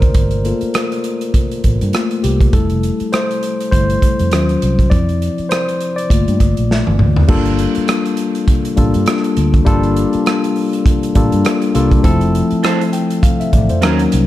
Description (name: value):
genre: lush 1970s-style soul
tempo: 101 BPM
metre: 4/4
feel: swing 58% on 16ths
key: G dorian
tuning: A4 = 440 Hz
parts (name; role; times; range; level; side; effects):
- tine electric piano; accompaniment; 0.0-14.3 s; F3 to G5; -16 LUFS; left 3 dB; none
- vintage muted fingered electric bass; bass; 0.0-14.3 s; F1 to G2; -16 LUFS; right 1 dB; none
- modern studio drum kit; drums; 0.0-14.3 s; crash cymbal, hi-hat, kick drum, rim click, snare drum, toms; -16 LUFS; right 1 dB; none
- electric guitar through a small old amp; riff; 12.6-14.0 s; Db4 to C5; -22 LUFS; right 7 dB; none
room: light reverb, studio reverb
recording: dark, warm production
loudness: -12 LUFS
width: side -14 dB against mid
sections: 0.0-7.3 A section; 7.3-14.3 A section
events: tine electric piano solo 0.0-7.3; drum fill 6.7-7.3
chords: 0.0 Gm9; 2.5 Fmaj7; 4.3 Ebm7; 4.9 Dm7; 6.1 Gm7; 7.3 Gm9; 12.0 Fmaj7